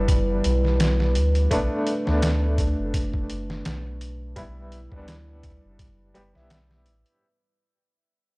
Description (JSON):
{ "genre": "trip hop", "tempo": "84 BPM", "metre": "4/4", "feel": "swing 55% on 16ths", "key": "unclear", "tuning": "A4 = 441 Hz", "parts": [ { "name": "warm upright piano", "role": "accompaniment", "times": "0.0-7.2 s", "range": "G3 to G4", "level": "-30 LUFS", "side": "equal", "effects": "tremolo, vintage 12-bit sampler grit, tape echo" }, { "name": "dark analog pad", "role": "sustained chords", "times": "0.0-7.2 s", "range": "G3 to B4", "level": "-28 LUFS", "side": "equal", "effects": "chorus, vintage 12-bit sampler grit" }, { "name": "soft dub sub bass", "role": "bass", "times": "0.0-7.0 s", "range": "F#1 to D2", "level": "-24 LUFS", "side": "equal", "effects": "tube saturation" }, { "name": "trip hop sampler-style drum kit", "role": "drums", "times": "0.1-7.2 s", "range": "hi-hat, kick drum, snare drum", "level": "-26 LUFS", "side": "equal", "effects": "studio reverb" } ], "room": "light reverb", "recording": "dry, gritty hardware recording, transformer saturation, cassette tape", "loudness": "-21 LUFS", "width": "side -27 dB against mid", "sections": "0.0-7.2 A section", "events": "fade-out 0.0-7.2", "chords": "0.0 Em; 1.5 Bm7; 4.4 Em", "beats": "0.08 0.79 | 1.51 2.22 2.94 3.65 | 4.36 5.08 5.79 6.51" }